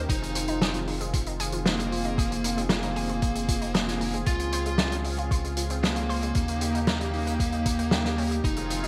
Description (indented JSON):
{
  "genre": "synthwave",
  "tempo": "115 BPM",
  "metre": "4/4",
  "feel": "straight",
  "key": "F minor",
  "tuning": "A4 = 440 Hz",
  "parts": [
    { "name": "warm analog pad", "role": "sustained chords", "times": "0.0-8.9 s", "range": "Db3 to Ab4", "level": "-36 LUFS", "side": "equal", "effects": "chorus, sidechain pumping" },
    { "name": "analog pluck", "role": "arpeggios", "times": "0.0-8.9 s", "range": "Eb3 to C5", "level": "-40 LUFS", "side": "equal", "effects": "chorus, digital delay" },
    { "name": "round analog bass", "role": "bass", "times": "0.0-8.9 s", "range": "F1 to Eb2", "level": "-34 LUFS", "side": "equal", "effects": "tube saturation" },
    { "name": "fuzz lead guitar", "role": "melody", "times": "0.1-8.9 s", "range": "Bb3 to F4", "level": "-33 LUFS", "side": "equal", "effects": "distortion, digital delay" },
    { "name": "electronic kick drum", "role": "drums", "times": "0.1-8.5 s", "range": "none", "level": "-30 LUFS", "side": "equal", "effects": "none" },
    { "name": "loose indie drum kit", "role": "drums", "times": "0.1-8.9 s", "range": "hi-hat, snare drum", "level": "-32 LUFS", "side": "equal", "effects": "gated reverb" }
  ],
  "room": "moderate plate reverb, RT60 1.6 s, studio reverb",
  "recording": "bright 1980s-style digital production",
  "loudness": "-27 LUFS",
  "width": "mono",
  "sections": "0.0-8.9 A section",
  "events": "none",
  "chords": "0.1 Fm7; 4.3 Dbmaj7; 6.4 Eb7",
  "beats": "| 0.09 0.61 1.14 1.66 | 2.18 2.70 3.22 3.75 | 4.27 4.79 5.31 5.83 | 6.36 6.88 7.40 7.92 | 8.44"
}